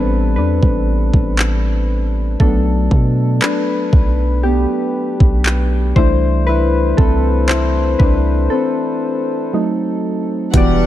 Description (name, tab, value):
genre	contemporary R&B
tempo	59 BPM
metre	4/4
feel	straight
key	unclear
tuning	A4 = 440 Hz
part	soft electric-piano-like synth keys	accompaniment	0.0-10.9 s	E3 to D5	-17 LUFS	left 2 dB	chorus
part	warm 808-style bass	bass	0.0-10.9 s	E1 to B2	-16 LUFS	equal	none
part	smooth R&B drum kit	drums	0.6-10.8 s	handclaps, hi-hat, kick drum	-15 LUFS	equal	none
part	dark studio string section	sustained chords	10.5-10.9 s	E3 to F#5	-21 LUFS	right 1 dB	sidechain pumping
room	digital ambience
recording	none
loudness	-13 LUFS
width	side -12 dB against mid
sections	0.0-10.5 A section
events	synth keys solo 0.0-10.5; break 8.5-10.5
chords	0.0 Am11; 2.4 Gmaj9/B; 6.0 C6; 9.5 F#dim7